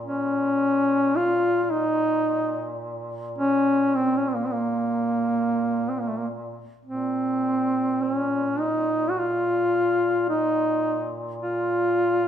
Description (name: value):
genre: caucasian folk, Caucasian lament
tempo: 53 BPM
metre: 3/4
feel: rubato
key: Bb minor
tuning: A4 = 441 Hz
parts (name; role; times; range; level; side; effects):
- mellow duduk; drone; 0.0-12.3 s; Bb2; -33 LUFS; equal; none
- mellow duduk; melody; 0.1-12.3 s; A3 to Gb4; -22 LUFS; equal; none
room: moderate recital hall reverb, RT60 1.4 s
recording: minimal, uncompressed stereo recording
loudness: -21 LUFS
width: side -9 dB against mid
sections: 0.0-12.3 A section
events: none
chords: none